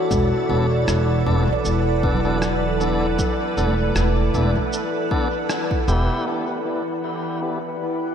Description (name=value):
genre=ambient dub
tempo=78 BPM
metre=4/4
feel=swing 56% on 16ths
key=E dorian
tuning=A4 = 439 Hz
part: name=soft additive organ-like pad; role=sustained chords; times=0.0-8.1 s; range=E3 to B5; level=-23 LUFS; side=equal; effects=ensemble chorus, built-in reverb
part: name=handpan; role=arpeggios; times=0.0-5.8 s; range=F#3 to D5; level=-29 LUFS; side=right 2 dB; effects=dub echo
part: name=drifting glass-harmonics texture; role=texture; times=0.0-8.1 s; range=F#5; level=-33 LUFS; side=right 4 dB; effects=chorus, built-in reverb
part: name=upright bass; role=bass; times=0.1-6.1 s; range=E1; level=-21 LUFS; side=equal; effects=none
part: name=electronic kick drum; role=drums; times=0.1-5.8 s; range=none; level=-25 LUFS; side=equal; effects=none
part: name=electronic shaker and rim click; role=drums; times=0.1-6.1 s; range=none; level=-32 LUFS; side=equal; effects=dub echo
part: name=tonewheel organ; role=stabs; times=0.5-7.6 s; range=B3 to A4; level=-28 LUFS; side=left 1 dB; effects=overdrive, low-pass filter, dub echo
room=wet cathedral reverb, RT60 4.8 s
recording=dreamy mix soaked in reverb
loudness=-19 LUFS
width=side -8 dB against mid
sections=0.0-6.3 A section; 6.3-8.1 B section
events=band accent 5.5-5.9; filter sweep on ambient pad 6.3-8.1; filter sweep on tonewheel organ 6.3-8.1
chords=0.0 Bm7/E; 6.3 Em